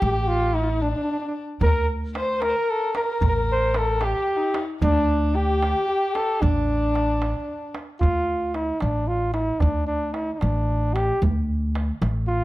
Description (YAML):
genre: Persian modal ensemble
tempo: 75 BPM (dotted quarters)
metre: 6/8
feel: straight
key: D dastgah shur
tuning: A4 = 441 Hz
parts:
  - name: mellow flugelhorn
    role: melody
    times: 0.0-12.4 s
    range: D4 to C5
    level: -24 LUFS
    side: equal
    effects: none
  - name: dark kamancheh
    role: second line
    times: 0.0-7.8 s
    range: D4 to C5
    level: -28 LUFS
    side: left 2 dB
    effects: none
  - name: upright bass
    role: bass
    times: 0.0-12.4 s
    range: A1 to D2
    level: -24 LUFS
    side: equal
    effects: none
  - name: tombak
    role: percussion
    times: 1.6-12.3 s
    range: none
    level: -26 LUFS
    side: right 2 dB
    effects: none
room: light reverb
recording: close, detailed microphones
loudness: -20 LUFS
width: side -17 dB against mid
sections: 0.0-8.0 A section; 8.0-12.4 B section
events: none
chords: none